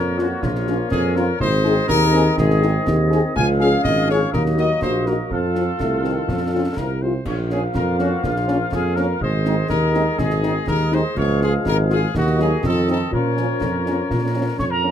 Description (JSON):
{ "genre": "military-style march for wind band", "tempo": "123 BPM", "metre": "2/4", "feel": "straight", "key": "Bb minor", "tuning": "A4 = 444 Hz", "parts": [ { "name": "bright trumpet section", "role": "melody", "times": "0.0-14.9 s", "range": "F4 to Ab5", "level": "-25 LUFS", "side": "left 3 dB", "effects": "none" }, { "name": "warm woodwind section", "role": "second line", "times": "0.0-14.8 s", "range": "F4 to F5", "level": "-26 LUFS", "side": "left 2 dB", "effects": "none" }, { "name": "clear trombone section", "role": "sustained chords", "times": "0.0-14.8 s", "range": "C3 to Db4", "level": "-27 LUFS", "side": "left 1 dB", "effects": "none" }, { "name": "warm tuba", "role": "bass", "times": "0.0-14.9 s", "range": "Ab1 to Bb2", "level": "-20 LUFS", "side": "right 2 dB", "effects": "none" }, { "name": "warm French horn section", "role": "accompaniment", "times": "0.2-14.9 s", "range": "F3 to Ab4", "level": "-23 LUFS", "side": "left 2 dB", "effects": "none" }, { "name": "concert snare drum, concert bass drum and clash cymbals", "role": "drums", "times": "0.2-14.8 s", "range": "none", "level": "-28 LUFS", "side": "equal", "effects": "none" }, { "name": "mellow piccolo", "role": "second line", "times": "14.6-14.9 s", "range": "Bb5 to Db6", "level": "-21 LUFS", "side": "right 5 dB", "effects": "none" } ], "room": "moderate booth ambience, RT60 0.3 s", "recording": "none", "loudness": "-17 LUFS", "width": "side -9 dB against mid", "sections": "0.0-14.9 A section", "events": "none", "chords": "0.0 Bbm; 1.4 Ab; 3.4 Db; 4.3 Ebm; 5.3 F; 7.3 Bbm; 9.2 Ab; 11.2 Db; 12.1 Ebm; 12.6 F7; 13.1 Bbm" }